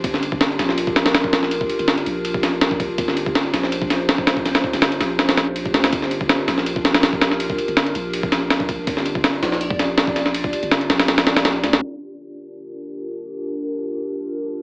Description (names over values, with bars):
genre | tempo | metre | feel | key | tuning
drum and bass, jungle | 163 BPM | 4/4 | straight | G minor | A4 = 440 Hz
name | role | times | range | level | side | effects
warbly tape-like pad | sustained chords | 0.0-14.6 s | D4 to D5 | -25 LUFS | equal | chorus, built-in reverb
long sustained 808-style bass | bass | 0.0-11.8 s | G1 to D2 | -31 LUFS | equal | tube saturation
breakbeat sampler-style drum kit | drums | 0.0-11.8 s | kick drum, ride cymbal, snare drum | -17 LUFS | equal | none
room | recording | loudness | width
light reverb | low-pass filter, AM radio sound | -17 LUFS | side -28 dB against mid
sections
0.0-11.8 A section; 11.8-14.6 B section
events
filter sweep 11.8-14.6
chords
0.0 Gm7